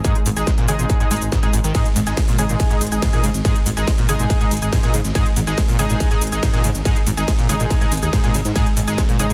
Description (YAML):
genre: driving peak-time techno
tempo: 141 BPM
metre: 4/4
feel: straight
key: unclear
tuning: A4 = 443 Hz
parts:
  - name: screaming distorted acid line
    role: riff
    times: 0.0-9.3 s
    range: G#2 to G#3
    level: -26 LUFS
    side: equal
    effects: distortion, ensemble chorus, sidechain pumping, delay
  - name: sync-sweep polysynth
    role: stabs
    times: 0.0-9.3 s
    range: G#3 to G#4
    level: -27 LUFS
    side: equal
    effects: chorus, sidechain pumping, delay
  - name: swarming drone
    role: drone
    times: 0.0-9.3 s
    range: G#2 to G#3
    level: -31 LUFS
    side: equal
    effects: none
  - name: dusty soul sampler-style drum kit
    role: drums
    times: 0.0-9.3 s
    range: hi-hat, snare drum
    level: -37 LUFS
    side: equal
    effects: overdrive, high-pass filter on hats, high-pass filter on snare, high-pass filter on room
  - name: electronic kick drum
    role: drums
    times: 0.0-9.1 s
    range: none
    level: -22 LUFS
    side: equal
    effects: distortion
  - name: techno drum kit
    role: drums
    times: 0.0-9.3 s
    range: hi-hat, ride cymbal, shaker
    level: -30 LUFS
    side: equal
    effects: overdrive
  - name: dark detuned saw bass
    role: bass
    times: 0.3-9.3 s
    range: G#1 to G#2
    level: -26 LUFS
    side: equal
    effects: sidechain pumping
room: digital ambience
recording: dense, heavily limited modern master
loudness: -18 LUFS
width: mono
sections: 0.0-9.3 A section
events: none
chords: 0.0 G#5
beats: | 0.04 0.47 0.90 1.32 | 1.75 2.17 2.60 3.02 | 3.45 3.88 4.30 4.73 | 5.15 5.58 6.00 6.43 | 6.85 7.28 7.71 8.13 | 8.56 8.98